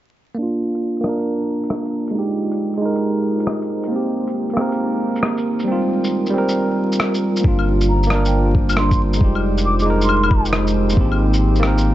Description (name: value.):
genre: future garage.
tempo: 136 BPM.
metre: 4/4.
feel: swing 66% on 16ths.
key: G phrygian.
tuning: A4 = 440 Hz.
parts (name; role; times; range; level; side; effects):
bell-like tine electric piano; accompaniment; 0.3-11.9 s; G3 to Bb4; -20 LUFS; right 2 dB; sidechain pumping, tape echo.
deep dark ambient pad; sustained chords; 1.3-11.9 s; G3 to D5; -25 LUFS; left 1 dB; chorus, built-in reverb, sidechain pumping.
electronic shaker, rim click and claves; drums; 0.7-11.8 s; none; -24 LUFS; left 2 dB; low-pass filter on perc, low-pass filter on snare, low-pass filter on room.
warm sub bass; bass; 7.4-11.9 s; F1 to Ab1; -18 LUFS; equal; tube saturation, sidechain pumping.
electronic kick drum; drums; 7.4-11.1 s; none; -16 LUFS; equal; none.
drifting glass-harmonics texture; texture; 8.5-11.9 s; C4 to C5; -33 LUFS; left 2 dB; chorus, built-in reverb.
mellow hollow baroque flute; melody; 7.9-10.5 s; G5 to D6; -25 LUFS; right 1 dB; tape echo.
room: light reverb.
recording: vinyl crackle, low-pass filter, nothing above 7.8 kHz.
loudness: -16 LUFS.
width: side -14 dB against mid.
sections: 0.4-7.4 A section; 7.4-11.9 B section.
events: fade-in on ambient pad 0.4-7.4; filter sweep on drum 0.4-7.4; filter sweep 0.4-7.4.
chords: 0.4 Gm7; 2.1 Fm9; 3.9 Abmaj9; 5.7 Eb69; 7.4 Gm7; 9.2 Fm9; 11.0 Abmaj9.